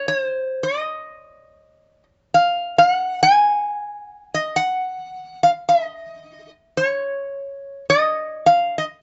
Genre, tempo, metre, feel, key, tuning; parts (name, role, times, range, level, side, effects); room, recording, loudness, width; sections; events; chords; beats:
hawaiian; 108 BPM; 4/4; swing 57% on 8ths; A4 = 440 Hz
metal-body resonator slide guitar; solo; 0.0-8.8 s; C5 to Ab5; -20 LUFS; equal
light reverb; dark, warm production, nothing above 7.9 kHz; -20 LUFS; mono
0.0-9.0 A section
| 0.09 0.64 1.20 1.76 | 2.32 2.87 3.43 3.99 | 4.54 5.10 5.66 6.21 | 6.77 7.33 7.88 8.44